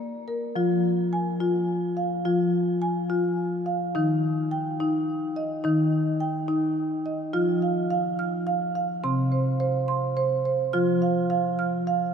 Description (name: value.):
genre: world meditative, meditative tuned percussion.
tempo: 71 BPM (dotted quarters).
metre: 6/8.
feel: straight.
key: F minor.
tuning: A4 = 441 Hz.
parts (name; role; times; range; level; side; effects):
marimba with medium mallets; solo; 0.0-12.1 s; C3 to F6; -23 LUFS; equal; none.
room: wet cathedral reverb, RT60 6.1 s.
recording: in a vast, echoing space.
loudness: -23 LUFS.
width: side -7 dB against mid.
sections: 0.0-7.3 A section; 7.3-12.1 B section.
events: none.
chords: 0.0 Bb; 0.6 Fm; 4.0 Eb; 7.3 Ebsus2/F; 9.0 Csus4; 10.7 F5.